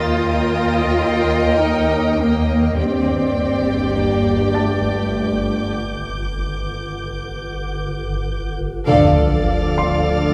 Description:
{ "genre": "cinematic, suspense film score", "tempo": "free time", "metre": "none", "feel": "none", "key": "unclear", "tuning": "A4 = 442 Hz", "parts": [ { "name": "rich chamber violin section", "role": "melody", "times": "0.0-10.3 s", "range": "F5 to G5", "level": "-30 LUFS", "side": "equal", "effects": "none" }, { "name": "warm studio violin section", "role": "second line", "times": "0.0-10.3 s", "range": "D5 to Eb5", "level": "-26 LUFS", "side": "equal", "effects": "none" }, { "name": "rich studio viola section", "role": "accompaniment", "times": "0.0-10.3 s", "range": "G4 to Bb4", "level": "-27 LUFS", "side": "equal", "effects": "none" }, { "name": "clear chamber double bass section", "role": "bass", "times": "0.0-10.3 s", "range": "D2 to G2", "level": "-25 LUFS", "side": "equal", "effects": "none" }, { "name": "warm studio cello section", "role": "bass", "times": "0.0-10.3 s", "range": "D3 to F4", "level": "-23 LUFS", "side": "equal", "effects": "none" }, { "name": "swarming drone", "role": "drone", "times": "0.0-10.3 s", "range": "G1 to Eb2", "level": "-26 LUFS", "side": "equal", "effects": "built-in reverb" }, { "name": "felt-muted upright piano", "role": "texture", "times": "0.0-10.3 s", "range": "A5 to C7", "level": "-35 LUFS", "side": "equal", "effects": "none" }, { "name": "rich chamber violin section", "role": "texture", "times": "0.0-10.3 s", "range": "D6 to A6", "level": "-34 LUFS", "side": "equal", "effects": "none" }, { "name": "warm French horn section", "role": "sustained chords", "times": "8.9-10.3 s", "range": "F3 to D4", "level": "-23 LUFS", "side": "equal", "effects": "none" }, { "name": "sub drop", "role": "sound effects", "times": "8.9-10.3 s", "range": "none", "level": "-23 LUFS", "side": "equal", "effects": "none" } ], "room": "moderate scoring stage reverb, RT60 1.9 s", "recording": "none", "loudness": "-19 LUFS", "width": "mono", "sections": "0.0-8.9 A section; 8.9-10.3 B section", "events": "break 5.8-8.9; band accent 8.9-9.5; impact 8.9-10.3", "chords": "0.0 Eb; 2.8 G5; 8.9 Dm", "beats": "free time" }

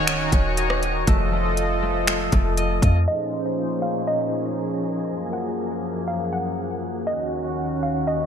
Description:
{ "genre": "hip hop, atmospheric cloud-rap", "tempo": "120 BPM", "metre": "4/4", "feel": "half-time", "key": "Bb minor", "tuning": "A4 = 438 Hz", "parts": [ { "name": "warm analog pad", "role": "sustained chords", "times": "0.0-8.3 s", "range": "Eb2 to Eb5", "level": "-25 LUFS", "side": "equal", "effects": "chorus, tremolo, sidechain pumping" }, { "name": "concert harp", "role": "arpeggios", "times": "0.0-5.7 s", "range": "A3 to F5", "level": "-30 LUFS", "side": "left 1 dB", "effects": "low-pass filter, ping-pong delay" }, { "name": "clean 808-style bass", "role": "bass", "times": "0.0-3.1 s", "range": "Db1 to F2", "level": "-23 LUFS", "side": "equal", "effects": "none" }, { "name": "wind-like tuned noise texture", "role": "texture", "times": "0.0-8.3 s", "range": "F3 to Eb6", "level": "-36 LUFS", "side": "equal", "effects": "built-in reverb, ensemble chorus" }, { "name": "trap drum kit", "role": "drums", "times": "0.1-2.9 s", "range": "finger snaps, hi-hat, kick drum, rim click", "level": "-21 LUFS", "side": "equal", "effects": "gated reverb" }, { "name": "hollow square pluck", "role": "melody", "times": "3.1-8.3 s", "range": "Eb5 to Gb5", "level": "-28 LUFS", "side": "right 1 dB", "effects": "chorus, low-pass filter, ping-pong delay" } ], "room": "moderate lush hall reverb, RT60 2.1 s", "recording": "bright 1980s-style digital production, low-pass filter", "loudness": "-21 LUFS", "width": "side -8 dB against mid", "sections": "0.0-3.1 A section; 3.1-8.3 B section", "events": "filter sweep 3.1-8.3", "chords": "0.0 Ebm7; 1.1 F7; 3.1 Bbm11; 5.1 Gbmaj9; 7.1 Ebm7", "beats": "0.07 0.57 | 1.07 1.57 2.07 2.57 | 3.07 3.57 4.07 4.57 | 5.07 5.57 6.07 6.57 | 7.07 7.57 8.07" }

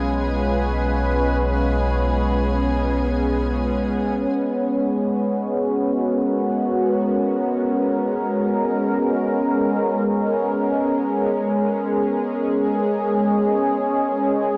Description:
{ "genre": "ambient", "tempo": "free time", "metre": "none", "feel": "none", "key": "unclear", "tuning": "A4 = 440 Hz", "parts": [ { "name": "warm analog pad", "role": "sustained chords", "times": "0.0-14.6 s", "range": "G#3 to B4", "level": "-22 LUFS", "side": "equal", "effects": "chorus" }, { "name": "warm sub bass", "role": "bass", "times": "0.0-4.2 s", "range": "B1", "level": "-26 LUFS", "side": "equal", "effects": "tube saturation" }, { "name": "clear chamber violin section", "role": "texture", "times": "0.0-4.3 s", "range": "G#4 to G#5", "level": "-36 LUFS", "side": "equal", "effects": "none" } ], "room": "wet huge ambient reverb, RT60 8.2 s", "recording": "worn, warbling old tape, cassette tape, warbly pitch drift", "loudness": "-21 LUFS", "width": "mono", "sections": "0.0-4.3 A section; 4.3-14.6 B section", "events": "none", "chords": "0.0 C#7/B; 4.3 G#m11", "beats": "free time" }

